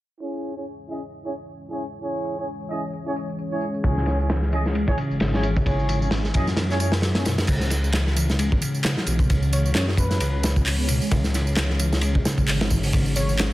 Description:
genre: breakbeat, breaks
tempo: 132 BPM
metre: 4/4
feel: swing 57% on 16ths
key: C# minor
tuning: A4 = 440 Hz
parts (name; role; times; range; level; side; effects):
- dark analog pad; sustained chords; 0.2-13.5 s; E3 to C#5; -32 LUFS; left 2 dB; chorus, sidechain pumping
- dark brass ensemble; stabs; 0.2-7.2 s; C#4 to D#5; -29 LUFS; right 1 dB; low-pass filter, ping-pong delay
- electronic tambourine and handclaps; drums; 0.2-13.5 s; none; -31 LUFS; right 1 dB; overdrive, low-pass filter on perc, low-pass filter on snare
- mellow tonewheel organ; riff; 3.8-13.5 s; B2 to C#4; -28 LUFS; equal; slow rotary speaker
- detuned saw bass; bass; 3.8-13.5 s; G#1 to F#2; -24 LUFS; equal; tube saturation
- crunchy breakbeat drum kit; drums; 3.8-13.5 s; crash cymbal, hi-hat, kick drum, ride cymbal, snare drum; -24 LUFS; equal; none
- airy dreamy lead; melody; 9.5-13.3 s; B4 to C#5; -32 LUFS; equal; chorus, old record sound, ping-pong delay
room: small room reverb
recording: low-pass filter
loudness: -20 LUFS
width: side -16 dB against mid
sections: 0.2-7.5 A section; 7.5-13.5 B section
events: filter sweep on drum 0.2-7.5; filter sweep on brass ensemble 0.2-7.5; filter sweep 0.2-7.5; kick drops out 6.6-7.5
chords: 0.2 C#m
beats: | 0.21 0.66 1.12 1.57 | 2.03 2.48 2.94 3.39 | 3.85 4.30 4.75 5.21 | 5.66 6.12 6.57 7.03 | 7.48 7.94 8.39 8.85 | 9.30 9.75 10.21 10.66 | 11.12 11.57 12.03 12.48 | 12.94 13.39

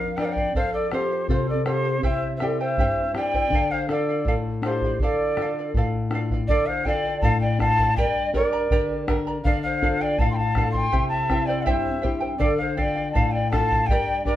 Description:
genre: andean folk, Andean ensemble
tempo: 81 BPM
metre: 2/4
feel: straight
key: D minor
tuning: A4 = 444 Hz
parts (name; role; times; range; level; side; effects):
- breathy mellow quena; melody; 0.0-14.4 s; C5 to C6; -25 LUFS; equal; none
- charango; accompaniment; 0.0-14.4 s; E4 to Bb5; -30 LUFS; right 2 dB; none
- flamenco guitar; accompaniment; 0.0-14.4 s; F2 to Bb4; -26 LUFS; left 2 dB; none
- polished pan flute; second line; 0.2-14.4 s; F4 to G5; -28 LUFS; left 1 dB; none
- bombo; percussion; 0.2-14.4 s; none; -27 LUFS; right 1 dB; none
room: wet small room reverb, RT60 0.5 s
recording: heard from further back in the room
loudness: -20 LUFS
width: side -13 dB against mid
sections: 0.0-6.5 A section; 6.5-14.4 B section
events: none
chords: 0.0 Bb; 0.6 F; 2.0 C; 3.5 Dm; 8.0 Gm; 9.4 Dm; 10.9 C; 12.4 Dm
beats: | 0.56 1.30 | 2.04 2.78 | 3.52 4.27 | 5.01 5.75 | 6.49 7.23 | 7.97 8.71 | 9.45 10.19 | 10.93 11.67 | 12.41 13.15 | 13.89

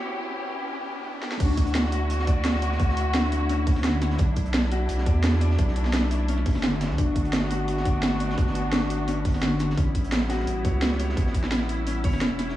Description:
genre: liquid drum and bass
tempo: 172 BPM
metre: 4/4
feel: straight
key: D major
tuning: A4 = 443 Hz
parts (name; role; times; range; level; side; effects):
- muted symphonic string section; sustained chords; 0.0-12.6 s; G3 to G4; -31 LUFS; left 1 dB; sidechain pumping
- Celtic harp; arpeggios; 0.0-12.6 s; D3 to D5; -31 LUFS; left 3 dB; digital delay
- riser; sound effects; 0.0-1.4 s; none; -36 LUFS; equal; none
- drum and bass drum kit; drums; 1.2-12.5 s; crash cymbal, hi-hat, snare drum; -28 LUFS; right 1 dB; small room ambience
- saturated sub bass; bass; 1.4-12.6 s; E1 to E2; -26 LUFS; equal; high-pass filter
- crunchy breakbeat drum kit; drums; 1.4-12.6 s; hi-hat, snare drum; -36 LUFS; right 1 dB; high-pass filter on hats, small room ambience, high-pass filter on snare, high-pass filter on room
- electronic kick drum; drums; 1.4-12.1 s; none; -23 LUFS; equal; small room ambience
room: light reverb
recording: high-pass filter, small room ambience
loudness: -22 LUFS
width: side -14 dB against mid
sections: 0.0-1.4 A section; 1.4-12.6 B section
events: build-up 0.0-1.4; riser 0.0-1.4; filter sweep on harp 0.0-1.4; break 0.0-1.4; drum fill 1.2; drop 1.4-12.6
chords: 0.0 A9 (rootless); 1.4 Dmaj9; 4.2 Bm11; 7.0 Gmaj7; 9.8 A9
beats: | 0.01 0.36 0.70 1.05 | 1.40 1.75 2.10 2.45 | 2.80 3.15 3.50 3.84 | 4.19 4.54 4.89 5.24 | 5.59 5.94 6.29 6.63 | 6.98 7.33 7.68 8.03 | 8.38 8.73 9.08 9.43 | 9.77 10.12 10.47 10.82 | 11.17 11.52 11.87 12.22 | 12.56

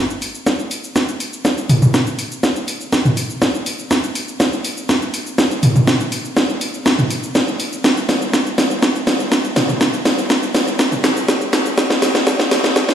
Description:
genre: melodic techno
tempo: 122 BPM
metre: 4/4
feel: straight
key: none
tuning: none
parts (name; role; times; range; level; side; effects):
- house drum kit; drums; 0.1-12.9 s; hi-hat, shaker, snare drum, toms; -15 LUFS; equal; none
- electronic kick drum; drums; 0.5-12.9 s; none; -27 LUFS; equal; none
room: wet scoring stage reverb, RT60 1.5 s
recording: played on a big sound system in a bare room, stone room reverb, high-pass filter, lossy compression artefacts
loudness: -15 LUFS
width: side -9 dB against mid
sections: 0.0-12.9 A section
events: build-up 0.0-12.9; drum fill 0.0-12.9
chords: none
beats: 0.47 0.96 1.45 | 1.94 2.43 2.92 3.42 | 3.91 4.40 4.89 5.38 | 5.88 6.37 6.86 7.35 | 7.84 8.34 8.83 9.32 | 9.81 10.30 10.79 11.29 | 11.78 12.27 12.76

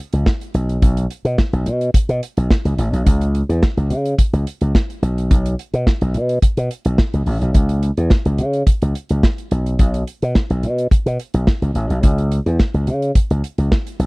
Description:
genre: early-eighties boogie funk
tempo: 107 BPM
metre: 4/4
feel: straight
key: unclear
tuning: A4 = 442 Hz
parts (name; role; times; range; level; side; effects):
- slap bass with an envelope filter; bass; 0.1-14.1 s; A1 to C#3; -17 LUFS; equal; none
- modern studio drum kit; drums; 0.1-14.1 s; hi-hat, kick drum, snare drum; -15 LUFS; equal; none
room: little or no reverb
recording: dry, close 1970s-style studio recording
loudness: -15 LUFS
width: side -27 dB against mid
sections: 0.0-14.1 A section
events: none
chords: none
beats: 0.26 | 0.82 1.38 1.95 2.50 | 3.07 3.63 4.19 4.75 | 5.31 5.87 6.43 6.99 | 7.55 8.11 8.67 9.23 | 9.79 10.36 10.92 11.48 | 12.04 12.60 13.16 13.72

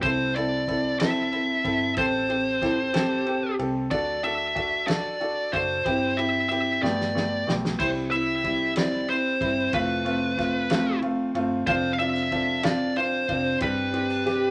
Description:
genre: six-eight pop ballad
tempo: 62 BPM (dotted quarters)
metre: 6/8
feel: straight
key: C major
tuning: A4 = 441 Hz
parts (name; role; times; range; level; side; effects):
- fuzz lead guitar; melody; 0.0-14.5 s; B4 to F5; -28 LUFS; equal; distortion
- clear upright piano; accompaniment; 0.0-14.5 s; G3 to A4; -29 LUFS; equal; none
- vintage muted fingered electric bass; bass; 0.0-14.5 s; F1 to D2; -40 LUFS; equal; none
- natural country drum kit; drums; 0.0-14.4 s; crash cymbal, kick drum, ride cymbal, snare drum; -34 LUFS; equal; none
- mellow French horn section; second line; 2.6-3.7, 14.3-14.5 s; E4 to G4; -30 LUFS; equal; none
- fingerpicked steel-string acoustic guitar; arpeggios; 7.8-14.5 s; F3 to A4; -37 LUFS; equal; none
room: moderate club reverb, RT60 0.6 s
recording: vinyl crackle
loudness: -25 LUFS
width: mono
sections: 0.0-14.5 A section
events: drum fill 6.8-7.8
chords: 0.0 C6; 2.0 Am7; 3.9 D; 5.9 C/G; 6.8 Gadd9; 7.8 C; 9.7 F; 11.7 Dm7/F; 13.6 Gsus4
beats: | 0.03 1.00 | 1.97 2.94 | 3.91 4.88 | 5.85 6.82 | 7.79 8.76 | 9.73 10.70 | 11.67 12.64 | 13.61

